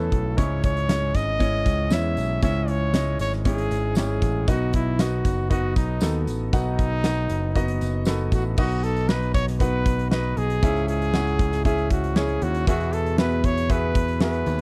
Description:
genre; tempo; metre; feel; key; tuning
piano-driven pop; 117 BPM; 4/4; straight; unclear; A4 = 441 Hz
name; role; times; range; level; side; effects
warm trumpet; melody; 0.0-14.6 s; D#4 to E5; -30 LUFS; equal; none
clear grand piano; accompaniment; 0.0-14.6 s; G#2 to B5; -30 LUFS; equal; none
modern bright picked electric bass; bass; 0.0-14.6 s; F#1 to E2; -28 LUFS; equal; none
huge arena drum kit; drums; 0.1-14.6 s; crash cymbal, hi-hat, kick drum, snare drum; -27 LUFS; equal; none
tambourine; percussion; 0.4-8.4 s; none; -49 LUFS; equal; none
room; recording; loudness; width
little or no reverb; dry, close 1970s-style studio recording; -23 LUFS; mono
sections
0.0-8.6 A section; 8.6-14.6 B section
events
grand piano fill 7.8-8.6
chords
0.4 C#m; 4.5 B; 10.6 C#m; 12.7 Eadd9

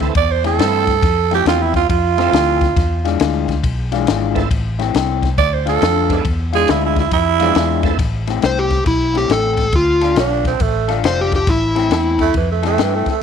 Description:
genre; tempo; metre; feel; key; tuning
electric blues shuffle; 138 BPM; 4/4; swing 65% on 8ths; A minor; A4 = 438 Hz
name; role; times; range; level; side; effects
bright tonewheel organ; accompaniment; 0.0-8.0 s; E3 to A4; -25 LUFS; right 13 dB; slow rotary speaker, overdrive, chorus vibrato
electric guitar through a small old amp; riff; 0.0-13.1 s; A2 to A4; -22 LUFS; left 14 dB; spring reverb
vintage muted fingered electric bass; bass; 0.0-13.1 s; F1 to G2; -20 LUFS; equal; none
compact cocktail drum kit; drums; 0.0-13.1 s; kick drum, ride cymbal, snare drum; -20 LUFS; left 3 dB; none
growling tenor saxophone; second line; 0.2-13.2 s; E3 to D5; -17 LUFS; right 12 dB; none
overdriven slide guitar; melody; 8.5-12.3 s; E4 to C5; -17 LUFS; left 1 dB; none
room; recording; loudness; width
light reverb, studio reverb; 1960s-style stereo with parts hard left and right; -14 LUFS; side -7 dB against mid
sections
0.0-8.0 A section; 8.0-13.2 B section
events
tenor saxophone solo 0.0-8.0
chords
0.0 Am; 1.0 Fmaj7; 2.8 E7b9; 4.5 Am; 5.4 Dm; 6.3 E7b9; 8.0 Am; 9.7 Dm; 11.5 Am

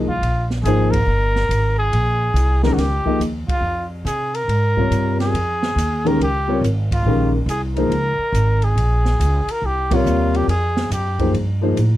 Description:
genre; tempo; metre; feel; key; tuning
modal jazz; 140 BPM; 4/4; swing 65% on 8ths; Bb dorian; A4 = 440 Hz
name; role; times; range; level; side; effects
warm concert grand piano; accompaniment; 0.0-11.8 s; C3 to Eb5; -20 LUFS; left 2 dB; none
upright bass; bass; 0.0-12.0 s; G1 to C3; -19 LUFS; equal; none
breathy trumpet; melody; 0.1-11.3 s; F4 to Bb4; -22 LUFS; equal; none
open jazz drum kit; drums; 0.1-11.9 s; hi-hat, kick drum, ride cymbal, snare drum; -28 LUFS; right 1 dB; none
room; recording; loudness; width
light reverb; dark, warm production; -16 LUFS; side -14 dB against mid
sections
0.0-12.0 A section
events
band accent 0.9, 3.4, 6.8, 9.8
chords
0.0 Bbm9

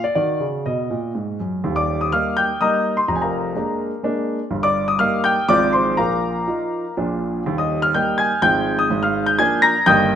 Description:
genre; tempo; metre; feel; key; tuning
classical-period piano sonatina; 124 BPM; 3/4; straight; Eb major; A4 = 440 Hz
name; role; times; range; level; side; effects
warm grand piano; solo; 0.0-10.2 s; Eb1 to Bb6; -17 LUFS; equal; none
room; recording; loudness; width
moderate recital hall reverb, RT60 1.5 s; close, detailed microphones; -17 LUFS; side -9 dB against mid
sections
0.0-1.6 A section; 1.6-10.2 A section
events
none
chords
0.2 Ebm; 1.6 Eb; 3.1 Bb7/F; 4.5 Eb/G; 5.5 Fm/Ab; 6.0 Bbsus4; 7.0 Bb; 7.5 Eb; 8.4 Fm/Ab; 8.9 Bb7/Ab

